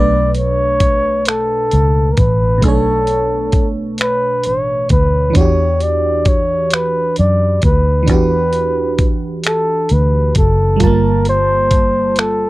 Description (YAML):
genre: slow six-eight R&B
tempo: 44 BPM (dotted quarters)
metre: 6/8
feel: straight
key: unclear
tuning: A4 = 441 Hz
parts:
  - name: breathy flugelhorn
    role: melody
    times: 0.0-12.5 s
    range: A4 to D5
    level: -16 LUFS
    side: equal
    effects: none
  - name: FM electric piano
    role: accompaniment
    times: 0.0-12.5 s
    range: B2 to A5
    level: -20 LUFS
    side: right 3 dB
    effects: chorus
  - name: vintage muted fingered electric bass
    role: bass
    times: 0.0-12.5 s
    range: F#1 to F#2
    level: -16 LUFS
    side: equal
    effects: none
  - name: dusty soul sampler-style drum kit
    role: drums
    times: 0.3-12.4 s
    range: finger snaps, hi-hat, kick drum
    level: -16 LUFS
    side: equal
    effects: none
room: little or no reverb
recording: dry, close 1970s-style studio recording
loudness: -12 LUFS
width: side -18 dB against mid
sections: 0.0-12.5 A section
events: none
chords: 0.0 Bm9; 5.4 Em9; 10.8 Gm9